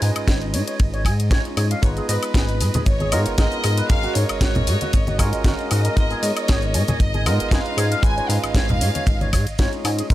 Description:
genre	nu-disco, nu disco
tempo	116 BPM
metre	4/4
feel	swing 54% on 16ths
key	unclear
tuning	A4 = 440 Hz
part	barky tine electric piano	accompaniment	0.0-10.1 s	G#3 to E#5	-28 LUFS	right 1 dB	overdrive, auto-pan, sidechain pumping
part	warm symphonic violin section	sustained chords	0.0-10.1 s	C#5 to D#5	-33 LUFS	left 1 dB	vintage 12-bit sampler grit, sidechain pumping
part	electric guitar with an envelope filter	riff	0.0-10.0 s	F#4 to G#5	-30 LUFS	right 1 dB	lush chorus
part	chorused synth bass	bass	0.0-10.1 s	G#1 to G#2	-22 LUFS	equal	tube saturation
part	house drum kit	drums	0.0-10.1 s	hi-hat, ride cymbal, snare drum, woodblock	-28 LUFS	left 1 dB	none
part	kick drum	drums	0.3-10.1 s	none	-19 LUFS	equal	none
part	rich chamber violin section	melody	1.8-9.8 s	B4 to G#5	-28 LUFS	equal	tape echo
part	maracas and congas	percussion	1.8-10.1 s	none	-27 LUFS	equal	none
room	small room ambience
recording	none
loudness	-17 LUFS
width	side -15 dB against mid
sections	0.0-10.1 A section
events	none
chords	0.0 C#7/G#; 1.8 G#m69; 3.9 F#maj7/G#; 6.0 G#m69; 7.8 C#7/G#

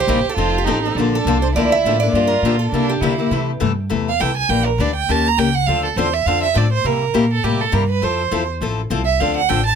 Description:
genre	acoustic string swing (jazz manouche)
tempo	204 BPM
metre	4/4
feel	swing 57% on 8ths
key	C major from 3.3 s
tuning	A4 = 440 Hz
part	picked acoustic archtop guitar	melody	0.0-3.2 s	G4 to E5	-20 LUFS	right 3 dB	tape echo
part	warm violin	second line	0.0-9.8 s	D4 to Bb5	-20 LUFS	right 8 dB	none
part	upright bass	bass	0.0-9.8 s	F1 to D3	-21 LUFS	equal	none
part	picked steel-string acoustic guitar	accompaniment	0.1-9.6 s	C3 to Bb4	-20 LUFS	left 6 dB	none
room	little or no reverb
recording	close, detailed microphones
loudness	-15 LUFS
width	side -7 dB against mid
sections	0.0-3.3 A section; 3.3-9.8 B section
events	violin solo 3.3-9.8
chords	0.4 F7; 1.0 Bbmaj7; 2.1 Gm7; 2.7 C7; 3.3 C6; 4.5 Em7b5; 5.1 Eb7; 5.7 Dm7; 6.8 C7; 8.0 Fmaj7; 9.2 Dm7

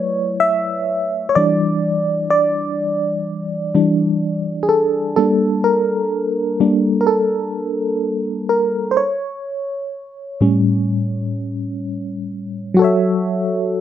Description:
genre	R&B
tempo	63 BPM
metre	4/4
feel	swing 58% on 16ths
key	unclear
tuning	A4 = 440 Hz
part	FM electric piano with auto-pan	solo	0.0-13.8 s	A2 to E5	-16 LUFS	equal	none
room	moderate studio reverb, RT60 0.7 s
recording	dark, warm production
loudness	-16 LUFS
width	side -10 dB against mid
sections	0.0-12.8 A section; 12.8-13.8 B section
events	FM electric piano solo 0.0-12.8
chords	0.0 F#m7; 1.4 Em7; 5.2 Gmadd9; 9.0 A7; 12.8 F#m7

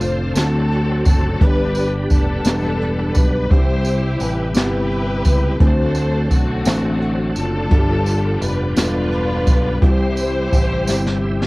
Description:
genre	slow gospel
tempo	57 BPM (dotted quarters)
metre	6/8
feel	straight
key	C major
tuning	A4 = 442 Hz
part	warm studio string section	melody	0.0-11.5 s	A3 to C5	-23 LUFS	left 1 dB	none
part	mellow tine electric piano	accompaniment	0.0-11.5 s	G2 to C5	-22 LUFS	left 1 dB	medium stereo tremolo, cassette tape
part	bright tonewheel organ	sustained chords	0.0-11.5 s	C3 to E5	-30 LUFS	right 1 dB	slow rotary speaker, overdrive, chorus vibrato, cassette tape
part	fingered electric bass	bass	0.0-11.5 s	E1 to D2	-22 LUFS	equal	none
part	jazz brush drum kit	drums	0.0-11.5 s	hi-hat, kick drum, snare drum	-16 LUFS	equal	cassette tape
part	tambourine	percussion	0.0-11.2 s	none	-32 LUFS	right 3 dB	none
room	studio reverb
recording	home recording on cassette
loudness	-15 LUFS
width	side -23 dB against mid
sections	0.0-11.5 A section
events	drum fill 10.9-11.5; tonewheel organ fill 10.9-11.5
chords	0.4 D7; 1.4 G; 3.5 Cmaj7; 5.6 D7; 7.7 G7; 9.8 C

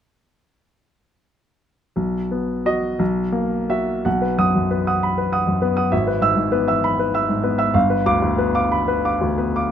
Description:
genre	classical, romantic character piece for solo piano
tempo	53-68 BPM (dotted quarters)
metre	6/8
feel	rubato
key	unclear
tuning	A4 = 440 Hz
part	clear grand piano	solo	2.0-9.7 s	G1 to E6	-17 LUFS	equal	none
room	light reverb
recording	none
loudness	-17 LUFS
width	side -9 dB against mid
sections	2.0-4.1 A section; 4.1-9.7 B section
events	none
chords	2.0 B; 3.0 F#7/B; 4.1 B; 5.9 E/G#; 7.8 G7

